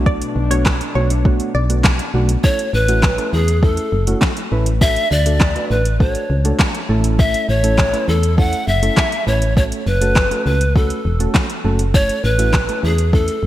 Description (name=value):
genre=dance-pop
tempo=101 BPM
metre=4/4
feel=straight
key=A major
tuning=A4 = 439 Hz
part: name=soft electric-piano-like synth keys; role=accompaniment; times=0.0-13.4 s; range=A3 to B4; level=-24 LUFS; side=right 2 dB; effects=chorus, sidechain pumping
part: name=chorused pulse-width pad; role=sustained chords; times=0.0-2.4 s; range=B2 to D4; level=-27 LUFS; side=left 4 dB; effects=sidechain pumping
part: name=solid FM bass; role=bass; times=0.0-13.5 s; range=E1 to E2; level=-17 LUFS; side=equal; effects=sidechain pumping
part: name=wide unison pluck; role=melody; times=0.1-1.8 s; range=B4 to D5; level=-25 LUFS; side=right 1 dB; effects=digital delay
part: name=smooth R&B drum kit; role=drums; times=0.1-13.4 s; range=handclaps, hi-hat, kick drum, snare drum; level=-17 LUFS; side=equal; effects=overdrive, gated reverb
part: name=pan flute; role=melody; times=2.4-13.5 s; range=G#4 to F#5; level=-20 LUFS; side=left 1 dB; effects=digital delay
room=light reverb, digital ambience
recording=bright 1980s-style digital production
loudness=-14 LUFS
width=side -14 dB against mid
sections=0.0-2.4 A section; 2.4-13.5 B section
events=none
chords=0.0 Bm7; 2.4 A; 4.8 D; 6.9 A; 9.6 F#m; 11.9 A